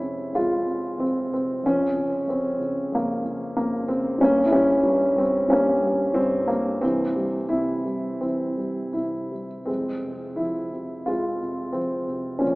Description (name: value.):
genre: classical, lyrical solo piano.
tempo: 81-95 BPM.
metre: 4/4.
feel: rubato.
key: F harmonic minor.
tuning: A4 = 439 Hz.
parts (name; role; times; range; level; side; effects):
dark concert grand piano; solo; 0.0-12.6 s; F2 to F4; -22 LUFS; equal; none.
room: wet church reverb, RT60 3.2 s.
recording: recorded in a church or concert hall, AM radio sound.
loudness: -22 LUFS.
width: side -22 dB against mid.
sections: 0.0-12.6 A section.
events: none.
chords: 0.0 Fm; 1.6 Bbm/F; 4.2 Gdim; 6.8 C; 9.7 Fm.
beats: 0.33 0.99 | 1.64 2.28 2.92 3.56 | 4.20 4.85 5.50 6.15 | 6.83 7.52 8.22 8.96 | 9.69 10.40 11.09 11.75 | 12.42.